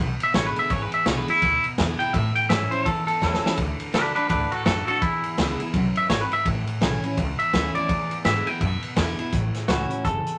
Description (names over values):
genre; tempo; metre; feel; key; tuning
rockabilly; 167 BPM; 4/4; swing 61% on 8ths; A major; A4 = 440 Hz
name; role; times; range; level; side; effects
picked steel-string acoustic guitar; accompaniment; 0.0-10.4 s; E2 to F#4; -31 LUFS; equal; none
upright bass; bass; 0.0-10.3 s; F#1 to A2; -32 LUFS; equal; none
twangy electric guitar; melody; 0.2-10.4 s; D4 to G5; -26 LUFS; equal; none
vintage drum kit; drums; 0.2-10.3 s; hi-hat, kick drum, ride cymbal, snare drum; -29 LUFS; equal; none
room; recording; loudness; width
moderate studio reverb, RT60 0.5 s; none; -23 LUFS; mono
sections
0.0-9.3 A section; 9.3-10.4 B section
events
drum fill 3.2-3.6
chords
0.0 E7; 2.1 A; 3.6 D; 5.0 E7; 6.5 A; 7.9 E7; 9.3 A